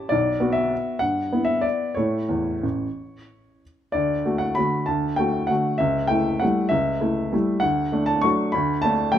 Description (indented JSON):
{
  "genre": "classical, piano waltz",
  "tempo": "174-209 BPM",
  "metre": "3/4",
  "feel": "rubato",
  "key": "D major",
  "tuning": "A4 = 440 Hz",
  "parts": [
    { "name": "warm upright piano", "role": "solo", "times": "0.0-9.2 s", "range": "A1 to C#6", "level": "-20 LUFS", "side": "equal", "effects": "none" }
  ],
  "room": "moderate large studio reverb, RT60 1.4 s",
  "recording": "none",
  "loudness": "-20 LUFS",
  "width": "side -10 dB against mid",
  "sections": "0.0-3.9 A section; 3.9-9.2 B section",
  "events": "none",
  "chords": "0.1 Bm; 1.0 Em7/G; 2.0 A; 3.9 D; 5.8 A7/C#; 7.6 D"
}